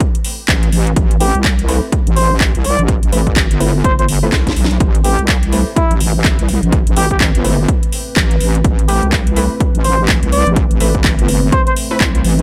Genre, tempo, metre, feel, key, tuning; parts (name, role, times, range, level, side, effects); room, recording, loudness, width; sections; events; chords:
bass house; 125 BPM; 4/4; swing 60% on 16ths; A minor; A4 = 440 Hz
electronic kick drum; drums; 0.0-12.1 s; -17 LUFS; equal; overdrive
house drum kit; drums; 0.0-12.4 s; handclaps, hi-hat, snare drum; -22 LUFS; equal; overdrive
wobble bass; bass; 0.5-12.4 s; G1 to C2; -18 LUFS; equal; chorus, tube saturation, sidechain pumping
trumpet with plunger mute; melody; 1.2-11.7 s; E4 to D5; -22 LUFS; equal; digital delay
orchestra-hit-like synth stab; stabs; 1.2-12.0 s; A3 to B4; -26 LUFS; equal; built-in reverb, sidechain pumping, digital delay
dark analog pad; sustained chords; 4.8-12.4 s; A3 to B4; -27 LUFS; equal; subtle chorus, sidechain pumping
little or no reverb; -14 LUFS; mono
0.0-12.4 A section
filter sweep on synth stab 0.0-12.4; drum fill 4.3-4.8
0.0 Amadd9